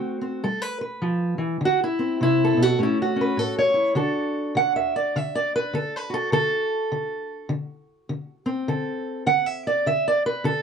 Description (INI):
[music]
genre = acoustic country blues, solo or duo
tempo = 102 BPM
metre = 4/4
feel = swing 62% on 8ths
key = D mixolydian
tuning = A4 = 440 Hz
[part]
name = fingerpicked steel-string acoustic guitar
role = solo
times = 0.0-10.6 s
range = A2 to F#5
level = -21 LUFS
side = right 1 dB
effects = none
[sound]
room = moderate studio reverb, RT60 0.5 s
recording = dark, warm production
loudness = -21 LUFS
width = side -6 dB against mid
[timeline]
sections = 0.0-4.0 A section; 4.0-10.6 B section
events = steel-string acoustic guitar solo 4.0-10.6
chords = 0.4 G7; 1.6 D13; 2.8 A; 4.0 D7